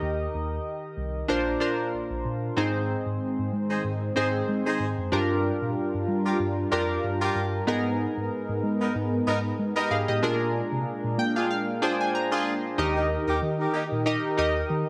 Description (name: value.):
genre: pop.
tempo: 94 BPM.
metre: 4/4.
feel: swing 55% on 16ths.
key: unclear.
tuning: A4 = 439 Hz.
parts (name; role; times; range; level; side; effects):
chorused retro synth keys; accompaniment; 0.0-14.9 s; G2 to C6; -30 LUFS; equal; none.
mellow tine electric piano; bass; 0.0-14.8 s; Bb1 to Bb3; -33 LUFS; equal; none.
warm analog pad; sustained chords; 2.6-14.9 s; Eb3 to Bb4; -34 LUFS; equal; chorus.
warm horn section; stabs; 3.7-13.8 s; Bb3 to C5; -33 LUFS; equal; none.
room: wet recital hall reverb, RT60 1.5 s.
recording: none.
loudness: -27 LUFS.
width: mono.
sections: 0.0-2.6 A section; 2.6-12.8 B section; 12.8-14.9 C section.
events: synth keys fill 10.9-12.8.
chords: 0.0 Eb; 1.3 Bbadd9; 2.6 Ab; 5.1 Gm7; 7.7 Abmadd9; 10.2 Bb7; 12.8 Eb.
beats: | 0.02 0.66 1.29 1.93 | 2.57 3.21 3.85 4.49 | 5.12 5.76 6.40 7.04 | 7.68 8.31 8.95 9.59 | 10.23 10.87 11.51 12.14 | 12.78 13.42 14.06 14.70.